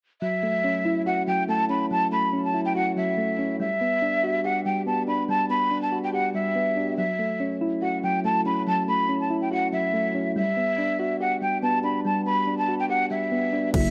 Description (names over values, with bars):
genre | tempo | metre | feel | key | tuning
hip hop, drill | 142 BPM | 4/4 | half-time | F# phrygian | A4 = 440 Hz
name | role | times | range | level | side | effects
breathy jazz flute | melody | 0.2-13.9 s | E5 to B5 | -27 LUFS | equal | low-pass filter
soft electric-piano-like synth keys | accompaniment | 0.2-13.9 s | F#3 to G4 | -29 LUFS | equal | chorus, low-pass filter
growling 808-style bass | bass | 13.7-13.9 s | F#1 | -26 LUFS | equal | none
drill drum kit | drums | 13.7-13.8 s | crash cymbal, hi-hat, kick drum | -26 LUFS | equal | none
room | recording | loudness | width
moderate digital room reverb, RT60 1.1 s | none | -25 LUFS | mono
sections
0.2-13.7 A section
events
none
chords
0.2 F#m7; 3.6 Gmaj7; 7.0 F#m7; 10.4 Gmaj7